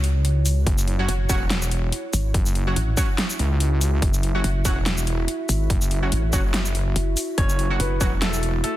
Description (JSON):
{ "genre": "heavy wobble dubstep", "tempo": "143 BPM", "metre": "4/4", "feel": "swing 54% on 16ths, half-time", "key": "F# minor", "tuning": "A4 = 440 Hz", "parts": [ { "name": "pulsing pluck wobble bass", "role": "bass", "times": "0.0-8.0 s", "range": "F#1 to C#2", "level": "-20 LUFS", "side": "equal", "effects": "chorus, overdrive" }, { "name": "dubstep drum kit", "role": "drums", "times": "0.0-8.7 s", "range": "hi-hat, shaker, snare drum", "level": "-27 LUFS", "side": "left 1 dB", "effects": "none" }, { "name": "warbly tape-like pad", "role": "texture", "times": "0.0-8.8 s", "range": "E4 to E5", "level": "-31 LUFS", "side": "right 2 dB", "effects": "chorus, built-in reverb, sidechain pumping" }, { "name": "wobble bass", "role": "bass", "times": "0.7-8.6 s", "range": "E1 to C#2", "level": "-23 LUFS", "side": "equal", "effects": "chorus, overdrive" }, { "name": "electronic kick drum", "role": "drums", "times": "0.7-8.1 s", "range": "none", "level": "-23 LUFS", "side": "equal", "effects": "none" }, { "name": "orchestra-hit-like synth stab", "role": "stabs", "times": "1.0-8.2 s", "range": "F#3 to F#4", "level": "-30 LUFS", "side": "right 1 dB", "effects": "built-in reverb, dub echo" }, { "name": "bright concert grand piano", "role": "melody", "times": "7.4-8.8 s", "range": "A3 to C#5", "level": "-28 LUFS", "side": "left 2 dB", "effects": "dub echo" } ], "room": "little or no reverb", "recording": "dense, heavily limited modern master", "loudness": "-19 LUFS", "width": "side -14 dB against mid", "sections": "0.0-8.8 A section", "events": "kick drops out 6.5-7.4", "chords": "0.0 F#5", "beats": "0.25 | 0.67 1.08 1.50 1.93 | 2.34 2.76 3.18 3.60 | 4.02 4.44 4.86 5.28 | 5.70 6.12 6.54 6.96 | 7.38 7.80 8.22 8.64" }